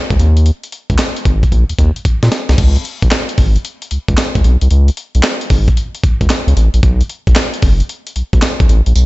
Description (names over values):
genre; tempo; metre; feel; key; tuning
R&B, new jack swing; 113 BPM; 4/4; swing 66% on 16ths; unclear; A4 = 440 Hz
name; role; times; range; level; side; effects
round analog bass; bass; 0.1-9.1 s; F#1 to Bb2; -11 LUFS; equal; none
breakbeat sampler-style drum kit; drums; 0.1-9.1 s; crash cymbal, handclaps, hi-hat, kick drum, snare drum, tambourine; -14 LUFS; equal; vintage 12-bit sampler grit, gated reverb
room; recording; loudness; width
digital ambience; nothing above 7.9 kHz; -11 LUFS; side -20 dB against mid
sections
0.0-2.6 A section; 2.6-9.1 B section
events
drum fill 1.5-2.6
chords
none